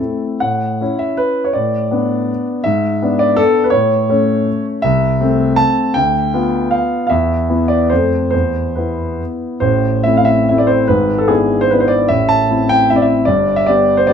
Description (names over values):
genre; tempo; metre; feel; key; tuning
classical, romantic triple-time dance for piano with dotted rhythms; 132-178 BPM; 3/4; rubato; A major, A minor from 4.8 s; A4 = 440 Hz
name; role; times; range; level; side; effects
warm concert grand piano; solo; 0.0-14.1 s; G1 to A5; -12 LUFS; equal; none
room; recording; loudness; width
light reverb; close, detailed microphones; -12 LUFS; side -7 dB against mid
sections
0.4-9.6 A section; 9.6-14.1 B section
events
none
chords
0.4 A; 1.6 Bm7/A; 2.6 E7/G#; 3.7 A; 4.8 Am/C; 6.0 Bdim/D; 7.1 E5; 7.9 F; 8.3 E5; 9.6 Am; 10.9 E7/G#; 12.1 Am; 13.3 G